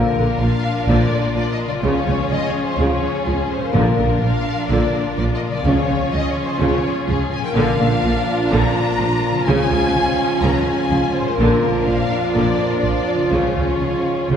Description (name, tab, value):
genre	cinematic, heroic adventure film score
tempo	126 BPM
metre	4/4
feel	straight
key	unclear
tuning	A4 = 440 Hz
part	dark symphonic violin section	melody	0.0-14.4 s	Ab4 to Bb5	-24 LUFS	left 2 dB	none
part	warm symphonic violin section	second line	0.0-14.4 s	F4 to Bb4	-28 LUFS	left 3 dB	none
part	rich symphonic viola section	accompaniment	0.0-14.4 s	Db3 to D4	-24 LUFS	right 1 dB	none
part	bright trombone section	sustained chords	0.0-14.4 s	F2 to F3	-28 LUFS	right 2 dB	none
part	dark French horn section	sustained chords	0.0-14.4 s	Db4 to F4	-25 LUFS	right 1 dB	none
part	concert harp	arpeggios	0.0-14.4 s	Bb2 to D5	-27 LUFS	left 5 dB	none
part	rich symphonic cello section	bass	0.2-14.4 s	Bb2 to Db3	-24 LUFS	right 1 dB	none
part	rich symphonic double bass section	bass	0.2-14.4 s	Bb1 to Db2	-22 LUFS	right 1 dB	none
part	timpani	percussion	3.7-4.4 s	Bb2	-23 LUFS	equal	none
room	wet scoring stage reverb, RT60 1.6 s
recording	heard from further back in the room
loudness	-16 LUFS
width	side -8 dB against mid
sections	0.0-14.4 A section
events	none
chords	0.0 Bb; 1.8 Db; 3.7 Bb; 5.7 Db; 7.6 Bb; 9.5 Db; 11.4 Bb; 13.3 Db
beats	0.40 0.88 1.35 | 1.83 2.31 2.79 3.27 | 3.75 4.22 4.70 5.18 | 5.65 6.13 6.60 7.08 | 7.56 8.03 8.52 8.99 | 9.47 9.95 10.42 10.90 | 11.38 11.86 12.33 12.81 | 13.30 13.79 14.29